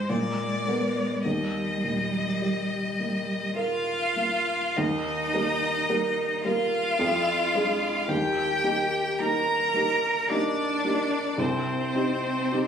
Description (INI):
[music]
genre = classical, slow romantic movement for piano trio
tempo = 49-56 BPM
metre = 3/4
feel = rubato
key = Eb major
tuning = A4 = 439 Hz
[part]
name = clear violin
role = melody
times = 0.0-12.7 s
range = C5 to Bb5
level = -29 LUFS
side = left 4 dB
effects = none
[part]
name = rich cello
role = second line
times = 0.0-12.7 s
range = G3 to Bb4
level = -28 LUFS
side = right 4 dB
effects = none
[part]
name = dark baby grand piano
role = accompaniment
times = 0.0-12.7 s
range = C2 to C5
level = -28 LUFS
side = equal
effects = none
[sound]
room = wet recital hall reverb, RT60 1.5 s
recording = recorded on a phone in the room, club reverb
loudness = -24 LUFS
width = side -7 dB against mid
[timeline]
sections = 0.0-4.8 A section; 4.8-12.7 B section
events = none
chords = 0.1 Bb7b9; 1.2 Eb; 7.0 Ddim/F; 8.1 Eb; 11.4 Cm